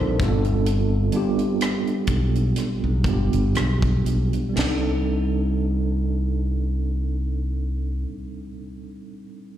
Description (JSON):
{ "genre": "R&B, neo-soul", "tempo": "58-66 BPM", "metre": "4/4", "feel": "swing 56% on 16ths", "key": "C dorian", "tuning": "A4 = 442 Hz", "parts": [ { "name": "mellow tine electric piano", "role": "accompaniment", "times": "0.0-9.6 s", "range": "G3 to D5", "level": "-25 LUFS", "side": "right 2 dB", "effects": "medium stereo tremolo, plate reverb, slapback echo" }, { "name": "modern bright fingered electric bass", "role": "bass", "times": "0.0-8.0 s", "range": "G1 to C2", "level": "-22 LUFS", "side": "equal", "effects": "none" }, { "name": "tight funk drum kit", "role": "drums", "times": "0.2-4.8 s", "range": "hi-hat, kick drum, rim click, snare drum, splash cymbal", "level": "-27 LUFS", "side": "equal", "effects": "none" } ], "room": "light reverb", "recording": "live gig heard through the venue's PA, recital hall reverb", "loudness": "-20 LUFS", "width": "side -11 dB against mid", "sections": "0.0-4.6 A section; 4.6-8.7 B section", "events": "slowing down 0.0-4.6", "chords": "0.2 G9; 4.6 Cm69" }